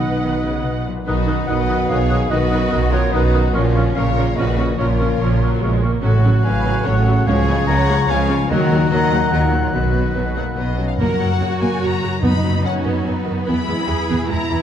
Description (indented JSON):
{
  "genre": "cinematic",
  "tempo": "145 BPM",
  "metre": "3/4",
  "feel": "straight",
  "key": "F# mixolydian from 11.0 s",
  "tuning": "A4 = 440 Hz",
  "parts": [
    { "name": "rich studio violin section", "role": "melody", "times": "0.0-14.6 s", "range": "F4 to B5", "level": "-28 LUFS", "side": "left 5 dB", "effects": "none" },
    { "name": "clear symphonic violin section", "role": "second line", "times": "0.0-14.6 s", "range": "Db4 to Gb5", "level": "-30 LUFS", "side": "left 4 dB", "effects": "none" },
    { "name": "concert flute", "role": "second line", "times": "0.0-10.7 s", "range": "Gb5 to Ab6", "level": "-30 LUFS", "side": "left 3 dB", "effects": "none" },
    { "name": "dark clarinet", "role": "second line", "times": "0.0-10.8 s", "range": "Bb4 to Bb5", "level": "-26 LUFS", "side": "left 2 dB", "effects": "none" },
    { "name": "warm oboe", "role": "second line", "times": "0.0-10.8 s", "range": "Eb5 to Eb6", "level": "-30 LUFS", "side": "right 2 dB", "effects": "none" },
    { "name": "rich symphonic viola section", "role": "accompaniment", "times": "0.0-14.6 s", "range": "C#3 to Gb5", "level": "-25 LUFS", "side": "right 2 dB", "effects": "none" },
    { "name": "mellow French horn section", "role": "sustained chords", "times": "0.0-11.0 s", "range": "Bb2 to Eb4", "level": "-27 LUFS", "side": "left 3 dB", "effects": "none" },
    { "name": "warm trombone section", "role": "sustained chords", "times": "0.0-10.8 s", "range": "Gb2 to Cb4", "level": "-26 LUFS", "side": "right 2 dB", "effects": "none" },
    { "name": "concert harp", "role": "arpeggios", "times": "0.0-14.6 s", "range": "E2 to Eb6", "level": "-24 LUFS", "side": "left 6 dB", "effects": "none" },
    { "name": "rich studio double bass section", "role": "bass", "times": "0.0-14.6 s", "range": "A1 to F#2", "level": "-21 LUFS", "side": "right 2 dB", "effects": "none" },
    { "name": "rich symphonic cello section", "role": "bass", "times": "0.0-14.6 s", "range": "A2 to A#4", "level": "-24 LUFS", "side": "right 2 dB", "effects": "none" },
    { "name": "timpani", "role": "percussion", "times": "11.0-12.8 s", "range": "F#2", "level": "-24 LUFS", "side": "equal", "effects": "none" }
  ],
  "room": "wet scoring stage reverb, RT60 1.6 s",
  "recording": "dark, warm production",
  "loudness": "-15 LUFS",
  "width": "side -9 dB against mid",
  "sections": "0.0-1.1 A section; 1.1-11.0 A section; 11.0-14.6 B section",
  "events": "none",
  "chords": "0.0 Cb; 3.5 Bbm; 6.0 Gbm/A; 7.3 Db; 8.5 Ebm; 9.7 Cb; 11.0 F#; 12.2 B/F#; 13.5 E"
}